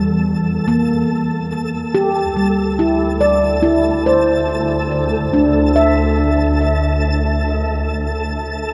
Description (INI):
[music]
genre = ambient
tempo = 71 BPM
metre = 4/4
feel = straight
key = unclear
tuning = A4 = 440 Hz
[part]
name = handpan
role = arpeggios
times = 0.0-8.0 s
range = G3 to E5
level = -18 LUFS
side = equal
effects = delay
[part]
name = dark studio double bass section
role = bass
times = 0.0-8.7 s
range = D2 to E2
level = -22 LUFS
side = equal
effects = none
[part]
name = twinkling granular texture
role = texture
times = 0.0-8.7 s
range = A4 to A5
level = -27 LUFS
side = equal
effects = built-in reverb, ensemble chorus
[sound]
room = wet huge ambient reverb, RT60 8.6 s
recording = dreamy mix soaked in reverb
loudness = -16 LUFS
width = mono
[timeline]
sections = 0.0-8.7 A section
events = fade-in on synth texture 0.0-8.7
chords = 0.0 Em; 2.4 D9sus4